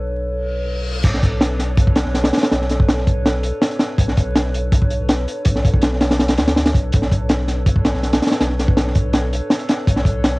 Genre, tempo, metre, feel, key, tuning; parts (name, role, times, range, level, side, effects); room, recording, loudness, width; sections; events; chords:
drum and bass, jungle; 163 BPM; 4/4; straight; B minor; A4 = 441 Hz
warbly tape-like pad; sustained chords; 0.0-10.4 s; D4 to C#5; -27 LUFS; equal; chorus, built-in reverb, cassette tape
saturated sub bass; bass; 0.0-10.4 s; B1 to D2; -22 LUFS; equal
reverse cymbal; sound effects; 0.4-1.0 s; -30 LUFS; left 3 dB
crunchy breakbeat drum kit; drums; 1.0-10.3 s; crash cymbal, hi-hat, kick drum, snare drum; -16 LUFS; equal; cassette tape
light reverb; home recording on cassette, vinyl crackle; -15 LUFS; side -24 dB against mid
0.0-1.0 A section; 1.0-10.4 B section
filter sweep on ambient pad 0.0-1.0; reverse cymbal 0.4-1.0; drop 1.0-10.4
0.0 Bm9